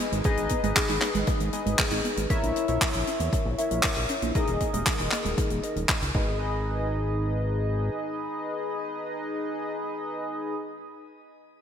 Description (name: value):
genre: italo disco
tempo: 117 BPM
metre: 4/4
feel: straight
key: G# minor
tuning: A4 = 440 Hz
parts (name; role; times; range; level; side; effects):
- warbly dusty pluck; arpeggios; 0.0-6.6 s; G#3 to A#4; -35 LUFS; right 3 dB; chorus, shimmer reverb, digital delay
- chorused polysynth; stabs; 0.0-10.5 s; D#4 to E5; -29 LUFS; left 2 dB; cassette tape, shimmer reverb, digital delay
- fat analog bass; bass; 0.1-7.9 s; D#1 to E2; -30 LUFS; equal; none
- tight funk drum kit; drums; 0.1-6.1 s; handclaps, hi-hat; -28 LUFS; equal; none
- electronic kick drum; drums; 0.2-6.2 s; none; -28 LUFS; equal; none
room: wet lush hall reverb, RT60 2.3 s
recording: bright 1980s-style digital production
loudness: -24 LUFS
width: side -8 dB against mid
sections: 0.0-6.4 A section; 6.4-10.5 B section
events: filter sweep on analog polysynth 0.0-6.4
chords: 0.0 G#m; 2.3 A#dim; 4.4 D#sus4; 6.1 G#m